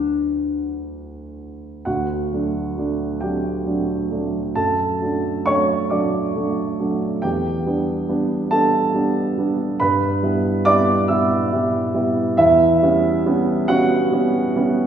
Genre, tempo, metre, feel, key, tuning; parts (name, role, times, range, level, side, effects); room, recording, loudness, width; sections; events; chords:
classical, romantic duo for clarinet and grand piano; 68 BPM; 3/4; uneven beats, rubato; D major; A4 = 440 Hz
dark clarinet; melody; 0.0-0.9 s; D4; -22 LUFS; left 6 dB
warm grand piano; accompaniment; 0.0-14.9 s; D2 to E6; -18 LUFS; right 2 dB
wet concert hall reverb, RT60 1.8 s; heard from further back in the room; -17 LUFS; side -8 dB against mid
0.0-1.9 A section; 1.9-14.9 B section
0.0 D; 4.6 D/F#; 7.2 Em7; 9.8 Em/G; 12.4 C#m7b5/E